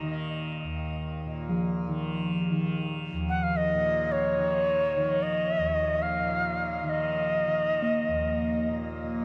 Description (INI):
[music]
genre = world meditative, free-time meditation music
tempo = free time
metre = none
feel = none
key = unclear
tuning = A4 = 440 Hz
[part]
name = tanpura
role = drone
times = 0.0-9.2 s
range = Eb2 to Eb3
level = -35 LUFS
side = equal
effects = none
[part]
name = quartz singing bowl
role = texture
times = 1.5-9.2 s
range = F3 to Bb3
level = -34 LUFS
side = equal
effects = shimmer reverb
[part]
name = reedy Native American-style cedar flute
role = melody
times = 3.3-8.7 s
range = Db5 to Gb5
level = -30 LUFS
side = equal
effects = shimmer reverb
[sound]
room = wet huge ambient reverb, RT60 7.8 s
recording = none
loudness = -28 LUFS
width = mono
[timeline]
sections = 0.0-9.0 A section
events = none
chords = none